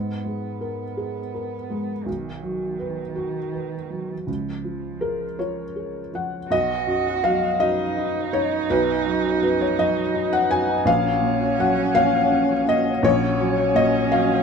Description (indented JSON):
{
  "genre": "neoclassical piano and strings",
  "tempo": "55 BPM (dotted quarters)",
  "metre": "6/8",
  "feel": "rubato",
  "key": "unclear",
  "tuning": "A4 = 441 Hz",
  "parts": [
    { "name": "dark cello", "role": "second line", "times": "0.0-14.4 s", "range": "D#3 to F#4", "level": "-27 LUFS", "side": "right 6 dB", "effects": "none" },
    { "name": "felt-muted upright piano", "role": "accompaniment", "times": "0.0-14.4 s", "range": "A#1 to G#5", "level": "-21 LUFS", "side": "left 1 dB", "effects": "none" },
    { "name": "concert harp", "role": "arpeggios", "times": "0.0-0.7, 6.5-14.4 s", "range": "F#4 to B5", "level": "-30 LUFS", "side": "left 3 dB", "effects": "none" }
  ],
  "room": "light reverb",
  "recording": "minimal, uncompressed stereo recording",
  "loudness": "-20 LUFS",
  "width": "side -6 dB against mid",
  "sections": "0.0-6.5 A section; 6.5-14.4 B section",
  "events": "none",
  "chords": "0.0 G#madd9; 2.1 B; 4.3 C#; 6.5 B; 10.9 F#/A#",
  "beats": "0.98 | 2.07 3.16 | 4.27 5.40 | 6.52 7.61 | 8.70 9.78 | 10.87 11.95 | 13.04 14.12"
}